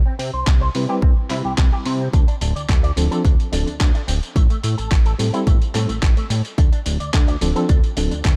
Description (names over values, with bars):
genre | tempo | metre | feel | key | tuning
nu-disco, nu disco | 108 BPM | 4/4 | straight | D dorian | A4 = 441 Hz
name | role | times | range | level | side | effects
fat analog bass | bass | 0.0-8.4 s | D1 to C3 | -24 LUFS | equal | sidechain pumping
electric guitar with an envelope filter | riff | 0.1-8.2 s | C3 to D5 | -32 LUFS | equal | ensemble chorus, low-pass filter
dusty soul sampler-style drum kit | drums | 0.2-8.4 s | handclaps, hi-hat, tambourine | -31 LUFS | equal | overdrive
electronic kick drum | drums | 0.5-8.4 s | none | -18 LUFS | equal | none
reed electric piano | accompaniment | 0.7-8.1 s | F3 to B5 | -27 LUFS | equal | fast tremolo, sidechain pumping
room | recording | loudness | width
little or no reverb | dark, warm production | -18 LUFS | mono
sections
0.0-8.4 A section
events
filter sweep on clean electric guitar 0.0-8.4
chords
0.0 Cmaj7; 2.1 Dm7; 4.4 Am7; 6.6 Dm7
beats
0.47 1.03 1.58 | 2.14 2.69 3.25 3.80 | 4.36 4.92 5.47 6.03 | 6.58 7.14 7.69 8.25